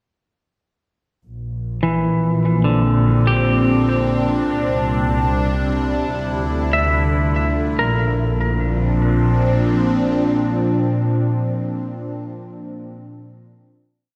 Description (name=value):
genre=ambient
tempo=74 BPM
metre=4/4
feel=straight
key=Bb lydian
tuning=A4 = 440 Hz
part: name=evolving wavetable pad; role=sustained chords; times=1.8-11.8 s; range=Bb2 to E4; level=-21 LUFS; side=equal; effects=phaser, built-in reverb
part: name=muted studio double bass section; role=bass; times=1.2-10.2 s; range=Bb1 to D2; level=-25 LUFS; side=equal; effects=none
part: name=semi-hollow electric guitar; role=arpeggios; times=1.8-12.5 s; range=D3 to E5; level=-24 LUFS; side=equal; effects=dub echo
room=wet spring reverb, RT60 2.6 s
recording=echo-heavy mix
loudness=-18 LUFS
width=mono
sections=1.2-7.8 A section; 7.8-11.0 final chord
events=none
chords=1.2 Bbadd9; 4.5 Cadd9; 6.1 Dmadd9; 7.8 Bbadd9